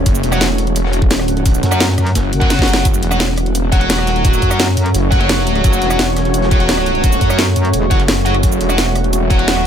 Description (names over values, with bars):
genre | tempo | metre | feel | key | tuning
dark technical drum and bass | 172 BPM | 4/4 | straight | F# minor | A4 = 440 Hz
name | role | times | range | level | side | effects
deep dark ambient pad | sustained chords | 0.0-9.7 s | A3 to F#5 | -20 LUFS | right 1 dB | chorus, built-in reverb, sidechain pumping
wide detuned saw bass | bass | 0.0-9.7 s | E1 to F#1 | -17 LUFS | equal | chorus, tube saturation, sidechain pumping
crunchy breakbeat drum kit | drums | 0.1-9.6 s | hi-hat, snare drum | -31 LUFS | right 1 dB | none
drum and bass drum kit | drums | 0.1-9.6 s | hi-hat, rim click, shaker, snare drum | -18 LUFS | equal | none
electronic kick drum | drums | 0.1-9.4 s | none | -14 LUFS | equal | none
distorted electric guitar | stabs | 0.3-9.7 s | F#4 to F#5 | -20 LUFS | equal | overdrive, ping-pong delay
metallic wobble bass | bass | 1.6-4.9, 7.2-7.9 s | E1 to F#2 | -15 LUFS | equal | chorus
room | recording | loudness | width
little or no reverb | none | -12 LUFS | side -8 dB against mid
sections
0.0-2.9 A section; 2.9-9.7 A section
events
drop 0.0-2.9, 2.9-9.7; drum fill 2.5-2.9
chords
0.0 F#m